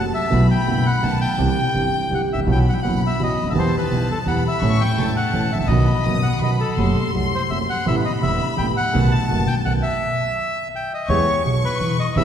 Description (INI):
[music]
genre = tango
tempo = 168 BPM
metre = 3/4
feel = rubato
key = unclear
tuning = A4 = 440 Hz
[part]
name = bandoneon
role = melody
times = 0.0-12.2 s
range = A4 to A5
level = -24 LUFS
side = left 1 dB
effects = none
[part]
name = warm studio violin section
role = second line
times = 0.0-12.2 s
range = G5 to D#6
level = -28 LUFS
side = left 4 dB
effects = none
[part]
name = warm concert grand piano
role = accompaniment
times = 0.0-12.2 s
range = E1 to A4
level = -21 LUFS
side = right 2 dB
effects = none
[part]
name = upright bass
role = bass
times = 0.0-12.2 s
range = E1 to E2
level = -22 LUFS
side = equal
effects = none
[sound]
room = wet concert hall reverb, RT60 2.3 s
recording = heard from further back in the room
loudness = -17 LUFS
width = side -9 dB against mid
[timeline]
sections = 0.0-11.1 A section; 11.1-12.2 B section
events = stop 10.0-11.1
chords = 0.3 B7sus4; 1.0 B7; 1.4 C; 2.5 Bsus4; 3.6 Em; 4.6 A; 5.7 B; 6.8 F#dim; 7.9 Amadd9; 8.9 B7; 10.0 N.C.; 11.1 E